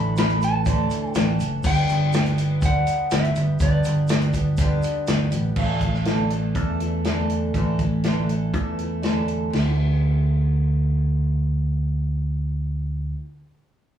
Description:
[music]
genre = folk rock and heartland rock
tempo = 121 BPM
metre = 4/4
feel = straight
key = D major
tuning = A4 = 441 Hz
[part]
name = mellow electric guitar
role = melody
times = 0.0-5.0 s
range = D5 to B5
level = -27 LUFS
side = equal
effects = slapback echo
[part]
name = picked old ladder-braced acoustic guitar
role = accompaniment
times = 0.0-13.2 s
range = G2 to A4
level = -29 LUFS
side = left 1 dB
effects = slapback echo
[part]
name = fingered electric bass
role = bass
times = 0.0-13.1 s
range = F#1 to E2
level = -21 LUFS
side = right 1 dB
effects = none
[part]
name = natural country drum kit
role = drums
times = 0.2-9.7 s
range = crash cymbal, hi-hat, kick drum, snare drum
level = -24 LUFS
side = equal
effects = none
[part]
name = tube shaker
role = percussion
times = 0.2-5.4 s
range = none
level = -45 LUFS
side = right 6 dB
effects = none
[sound]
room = light reverb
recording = live gig heard through the venue's PA, club reverb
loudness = -20 LUFS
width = side -9 dB against mid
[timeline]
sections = 0.0-5.6 A section; 5.6-9.5 B section; 9.5-13.5 C section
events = none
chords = 0.0 Asus4; 1.6 G; 5.6 Asus4; 9.5 Dadd9

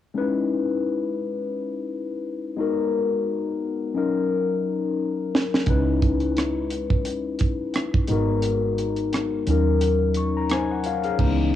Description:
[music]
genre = R&B, neo-soul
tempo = 87 BPM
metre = 4/4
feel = swing 56% on 16ths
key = C# dorian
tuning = A4 = 439 Hz
[part]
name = tine electric piano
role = accompaniment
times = 0.1-11.6 s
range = E3 to C#6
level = -23 LUFS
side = left 4 dB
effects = phaser, cassette tape
[part]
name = tight funk drum kit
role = drums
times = 5.3-11.4 s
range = crash cymbal, hi-hat, kick drum, rim click, snare drum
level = -23 LUFS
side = right 2 dB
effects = cassette tape
[part]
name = vintage muted fingered electric bass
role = bass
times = 5.7-11.6 s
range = G#1 to D#2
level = -25 LUFS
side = right 2 dB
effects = tube saturation
[sound]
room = little or no reverb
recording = home recording on cassette, small room ambience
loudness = -21 LUFS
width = side -11 dB against mid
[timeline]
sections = 0.2-11.2 A section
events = drum fill 5.0-5.7; kick muted 8.4-11.2; tine electric piano fill 9.8-11.2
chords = 0.2 C#m9; 2.6 G#m9; 3.9 D#m9; 5.7 C#m9; 8.1 G#m9; 9.5 D#m9

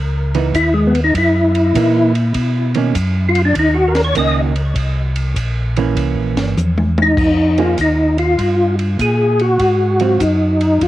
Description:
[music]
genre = soul jazz organ trio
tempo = 99 BPM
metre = 4/4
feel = swing 66% on 8ths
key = F minor from 7.2 s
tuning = A4 = 441 Hz
[part]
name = mellow tonewheel organ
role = bass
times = 0.0-10.9 s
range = G1 to B2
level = -17 LUFS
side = equal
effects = chorus vibrato, slow rotary speaker
[part]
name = hollow-body jazz guitar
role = accompaniment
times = 0.3-10.2 s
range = D#3 to Ab4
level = -20 LUFS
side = right 8 dB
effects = cassette tape
[part]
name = compact cocktail drum kit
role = drums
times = 0.3-10.9 s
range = crash cymbal, hi-hat, kick drum, ride cymbal, snare drum, toms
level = -24 LUFS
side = equal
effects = none
[part]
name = percussive tonewheel organ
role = melody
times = 0.6-10.9 s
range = Ab3 to D#5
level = -15 LUFS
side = left 1 dB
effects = slow rotary speaker, chorus vibrato, analog delay
[sound]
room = light reverb, small room ambience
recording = home recording on cassette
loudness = -13 LUFS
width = side -14 dB against mid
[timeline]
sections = 0.0-7.2 A section; 7.2-10.9 B section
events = tonewheel organ solo 0.0-7.2; drum fill 6.6-7.2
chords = 0.0 Dbm9; 1.1 Gb6; 2.4 Bmaj9; 4.8 Bbmadd9; 6.0 C7b9; 7.2 Fm11; 9.6 Ab6

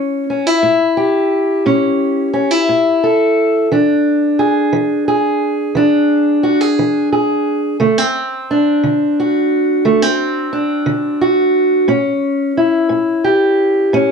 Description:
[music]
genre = blues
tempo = 59 BPM (dotted quarters)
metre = 12/8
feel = straight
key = unclear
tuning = A4 = 440 Hz
[part]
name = fingerpicked steel-string acoustic guitar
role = solo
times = 0.0-14.1 s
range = A2 to A4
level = -12 LUFS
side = equal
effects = none
[sound]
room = moderate studio reverb, RT60 0.7 s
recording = dark, warm production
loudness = -12 LUFS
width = side -6 dB against mid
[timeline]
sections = 0.0-14.1 A section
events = none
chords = 0.0 A7; 3.7 E7; 7.8 D7; 11.9 A7

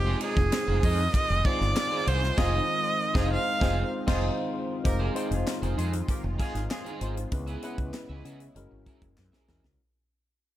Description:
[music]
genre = polished 1980s jazz-funk pop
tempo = 97 BPM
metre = 4/4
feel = straight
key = unclear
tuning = A4 = 439 Hz
[part]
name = rich viola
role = melody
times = 0.0-3.9 s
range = G4 to F5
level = -28 LUFS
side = right 2 dB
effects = none
[part]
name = tine electric piano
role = accompaniment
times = 0.0-9.8 s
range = Ab3 to Gb5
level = -33 LUFS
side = left 2 dB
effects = lush chorus
[part]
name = lush unison pad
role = sustained chords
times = 0.0-9.8 s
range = Bb2 to F4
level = -41 LUFS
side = right 2 dB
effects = chorus, phaser
[part]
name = mellow fretless electric bass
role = bass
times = 0.0-9.8 s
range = F1 to Db3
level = -28 LUFS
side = equal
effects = none
[part]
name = electric guitar at the edge of break-up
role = riff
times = 0.1-9.7 s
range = Eb4 to Gb5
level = -38 LUFS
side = right 4 dB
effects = analog chorus
[part]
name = tight funk drum kit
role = drums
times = 0.2-9.8 s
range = crash cymbal, hi-hat, kick drum, ride cymbal, snare drum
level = -30 LUFS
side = equal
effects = none
[part]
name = group handclap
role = percussion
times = 0.5-9.3 s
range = none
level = -42 LUFS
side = left 2 dB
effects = none
[part]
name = mellow horn section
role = second line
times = 2.4-7.0 s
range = Eb4 to C5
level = -40 LUFS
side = right 1 dB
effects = none
[sound]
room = little or no reverb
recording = faint mains hum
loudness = -25 LUFS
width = side -13 dB against mid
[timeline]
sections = 0.0-4.8 A section; 4.8-9.8 B section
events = band accent 2.4-4.8; fade-out 4.8-9.8; drum fill 9.2-9.8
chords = 0.0 Fm7; 7.3 Dbm7; 8.6 Gb9

